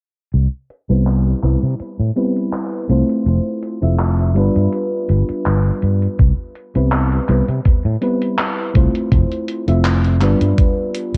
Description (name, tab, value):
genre	vaporwave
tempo	82 BPM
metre	4/4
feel	swing 54% on 16ths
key	C major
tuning	A4 = 440 Hz
part	sustaining fretless electric bass	bass	0.3-11.2 s	F1 to C3	-18 LUFS	equal	tube saturation
part	gated 80s digital drum machine	drums	0.3-11.2 s	handclaps, hi-hat	-28 LUFS	equal	gated reverb
part	mellow FM electric piano	accompaniment	0.9-11.2 s	G3 to E5	-22 LUFS	equal	lush chorus, dub echo
part	electronic kick drum	drums	6.2-10.7 s	none	-16 LUFS	equal	none
room	light reverb, digital ambience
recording	echo-heavy mix, cassette tape, low-pass filter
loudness	-17 LUFS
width	mono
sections	0.3-11.2 A section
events	filter sweep 0.3-11.2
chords	0.3 Cmaj7; 3.3 Fmaj7; 4.4 G7; 6.2 Cmaj7; 9.1 Fmaj7; 10.2 G7